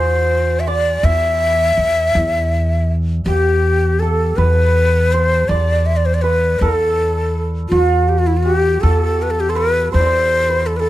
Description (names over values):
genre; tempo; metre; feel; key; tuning
Persian modal ensemble; 54 BPM (dotted quarters); 6/8; straight; E dastgah homayun, E dastgah shur from 3.3 s; A4 = 439 Hz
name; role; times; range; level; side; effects
breathy bright ney; melody; 0.0-10.9 s; E4 to E5; -16 LUFS; left 1 dB; none
santur; second line; 0.0-10.9 s; F4+45c to E5; -24 LUFS; right 5 dB; none
upright bass; bass; 0.0-10.9 s; E2; -17 LUFS; equal; none
room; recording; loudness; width
little or no reverb; close, detailed microphones; -13 LUFS; side -15 dB against mid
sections
0.0-3.3 A section; 3.3-10.9 B section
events
none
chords
none